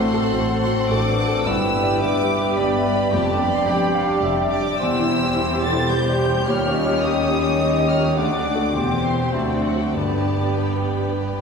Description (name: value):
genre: classical, romantic movement for piano and orchestra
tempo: 95-111 BPM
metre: 3/4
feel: rubato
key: G major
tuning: A4 = 442 Hz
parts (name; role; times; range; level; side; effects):
- clear grand piano; melody; 0.0-11.4 s; D2 to E5; -23 LUFS; left 2 dB; none
- rich studio violin section; melody; 0.0-11.4 s; F#5 to A6; -28 LUFS; left 1 dB; none
- clear studio violin section; second line; 0.0-11.4 s; G3 to F#5; -30 LUFS; left 2 dB; none
- large flute ensemble; second line; 0.0-11.4 s; F#5 to G5; -30 LUFS; right 4 dB; none
- mellow clarinet; second line; 0.0-11.4 s; B4 to G5; -28 LUFS; left 1 dB; none
- mellow cor anglais; second line; 0.0-11.4 s; A4 to D5; -31 LUFS; right 1 dB; none
- warm studio viola section; accompaniment; 0.0-11.4 s; G3 to G4; -27 LUFS; right 2 dB; none
- dark French horn section; sustained chords; 0.0-11.4 s; F#3 to A4; -29 LUFS; left 3 dB; none
- rich studio cello section; bass; 0.0-11.4 s; D2 to A2; -28 LUFS; right 1 dB; none
- rich studio double bass section; bass; 0.0-11.4 s; E1 to Eb2; -29 LUFS; right 1 dB; none
- timpani; percussion; 1.5-2.3, 10.0-10.9 s; G2; -36 LUFS; equal; none
room: wet scoring stage reverb, RT60 1.7 s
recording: recorded in a church or concert hall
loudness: -18 LUFS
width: side -5 dB against mid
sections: 0.0-11.4 A section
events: none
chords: 0.0 F#dim/A; 1.5 G; 3.1 G5/F; 4.8 C/E; 6.5 Eb7; 8.2 D; 8.7 C/E; 9.3 D7; 10.0 G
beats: 0.33 0.90 | 1.46 2.02 2.57 | 3.11 3.67 4.22 | 4.78 5.34 5.90 | 6.46 7.03 7.61 | 8.18 8.74 9.34 | 9.95 10.58 11.21